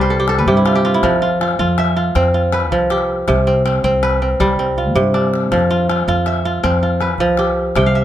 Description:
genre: west african traditional, West African string and xylophone music.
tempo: 107 BPM (dotted quarters).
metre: 12/8.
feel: straight.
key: F lydian.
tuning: A4 = 440 Hz.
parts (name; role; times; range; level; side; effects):
kora; arpeggios; 0.0-8.0 s; C3 to G5; -15 LUFS; right 1 dB; none.
upright bass; bass; 0.0-8.0 s; C2 to G2; -18 LUFS; left 1 dB; none.
calabash; percussion; 0.3-7.8 s; none; -23 LUFS; left 5 dB; none.
room: light reverb.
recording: close, detailed microphones.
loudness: -13 LUFS.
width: side -11 dB against mid.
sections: 0.0-8.0 A section.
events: kora fill 0.0-1.0, 7.8; drum fill 4.6-5.5.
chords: 0.0 C5; 1.0 F5; 3.3 C5; 5.5 F5.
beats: 0.48 | 1.04 1.60 2.16 2.72 | 3.28 3.84 4.40 4.96 | 5.52 6.08 6.64 7.21 | 7.77.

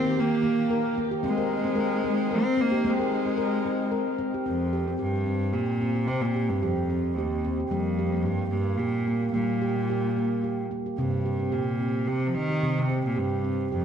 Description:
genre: world meditative, meditative tuned percussion.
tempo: 110 BPM.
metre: 3/4.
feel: swing 54% on 16ths.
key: C minor.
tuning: A4 = 440 Hz.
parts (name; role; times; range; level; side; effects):
clear cello; melody; 0.0-13.8 s; Eb2 to C4; -27 LUFS; equal; none.
dark studio string section; sustained chords; 0.0-4.4 s; Eb3 to C5; -34 LUFS; left 1 dB; none.
handpan; arpeggios; 0.0-13.8 s; C3 to Bb4; -27 LUFS; equal; diffuse ambient delay.
room: wet recital hall reverb, RT60 1.6 s, small room ambience.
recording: dark, warm production.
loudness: -24 LUFS.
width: side -8 dB against mid.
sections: 0.0-4.5 A section; 4.5-13.8 B section.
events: none.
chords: 0.0 Eb; 1.2 Ab; 4.5 C5; 7.7 Gm; 11.0 C5.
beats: 0.14 0.68 | 1.22 1.76 2.30 | 2.84 3.38 3.92 | 4.46 5.00 5.54 | 6.08 6.63 7.17 | 7.71 8.26 8.80 | 9.35 9.89 10.44 | 10.98 11.53 12.07 | 12.62 13.16 13.71.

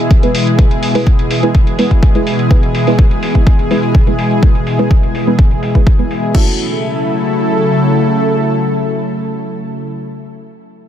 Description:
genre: progressive house.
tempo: 125 BPM.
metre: 4/4.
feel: straight.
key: F# minor.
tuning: A4 = 441 Hz.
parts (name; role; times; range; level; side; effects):
lush unison pad; sustained chords; 0.0-9.9 s; B2 to A4; -15 LUFS; left 1 dB; chorus, sidechain pumping.
deep house drum kit; drums; 0.1-6.4 s; crash cymbal, hi-hat; -25 LUFS; left 2 dB; overdrive, low-pass filter on hats, low-pass filter on snare, low-pass filter on cymbals, low-pass filter on room.
electronic kick drum; drums; 0.1-6.4 s; none; -10 LUFS; equal; overdrive.
deep mellow chord stab; stabs; 0.2-9.9 s; G#3 to B4; -19 LUFS; right 2 dB; chorus, sidechain pumping, digital delay.
room: small room ambience.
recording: dense, heavily limited modern master.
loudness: -10 LUFS.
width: side -10 dB against mid.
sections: 0.0-6.3 A section; 6.3-10.2 B section.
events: none.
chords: 0.0 E; 6.3 F#m7.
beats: 0.11 | 0.59 1.07 1.55 2.03 | 2.51 2.99 3.47 3.95 | 4.43 4.91 5.39 5.87 | 6.35 6.83 7.31 7.79 | 8.27 8.75 9.23 9.71.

